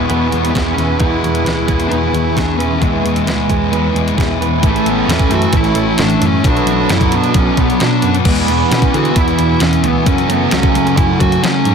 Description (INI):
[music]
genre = rock, shoegaze and dream pop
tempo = 132 BPM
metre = 4/4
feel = straight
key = unclear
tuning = A4 = 436 Hz
[part]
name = fuzz lead guitar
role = melody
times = 0.0-11.7 s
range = G#3 to F#4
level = -20 LUFS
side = equal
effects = distortion, analog delay
[part]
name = deep dark ambient pad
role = sustained chords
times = 0.0-11.7 s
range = A4 to E6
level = -22 LUFS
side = right 2 dB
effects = chorus, built-in reverb
[part]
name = direct-recorded clean electric guitar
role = arpeggios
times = 0.0-5.1 s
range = G#4 to B4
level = -24 LUFS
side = right 10 dB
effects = lush chorus, analog delay
[part]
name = cranked stack guitar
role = riff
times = 0.0-11.7 s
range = A2 to A4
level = -19 LUFS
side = right 12 dB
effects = overdrive, reverse reverb
[part]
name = thick fuzz guitar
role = riff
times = 0.0-11.7 s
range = E2 to B3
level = -18 LUFS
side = left 11 dB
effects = distortion, lush chorus
[part]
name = tine electric piano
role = bass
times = 0.0-11.7 s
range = A1 to F#3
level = -19 LUFS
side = equal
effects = overdrive, medium stereo tremolo
[part]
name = clean 12-bit digital drum machine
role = drums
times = 0.1-11.7 s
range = crash cymbal, hi-hat, kick drum, snare drum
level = -17 LUFS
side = equal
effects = none
[sound]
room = little or no reverb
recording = dense, heavily limited modern master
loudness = -11 LUFS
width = side -6 dB against mid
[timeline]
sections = 0.0-4.6 A section; 4.6-11.7 B section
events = none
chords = 0.0 E6; 4.6 A; 6.4 Bm; 8.3 E; 10.1 F#madd9